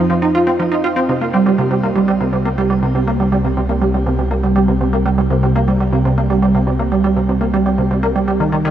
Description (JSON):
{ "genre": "ambient, sequencer-driven space music", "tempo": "121 BPM", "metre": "4/4", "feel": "straight", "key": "C minor", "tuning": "A4 = 440 Hz", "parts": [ { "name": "resonant blip pluck", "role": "riff", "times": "0.0-8.7 s", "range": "C3 to F4", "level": "-14 LUFS", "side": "right 2 dB", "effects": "lush chorus, tape echo, shimmer reverb" }, { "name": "analog drone", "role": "bass", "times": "0.0-8.7 s", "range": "C2 to F2", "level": "-20 LUFS", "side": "equal", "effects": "chorus" } ], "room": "moderate huge ambient reverb, RT60 7.7 s", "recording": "nothing above 10.7 kHz", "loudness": "-13 LUFS", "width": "side -10 dB against mid", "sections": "0.0-8.7 A section", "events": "none", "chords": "0.0 F7(no3); 1.1 C7(no3)" }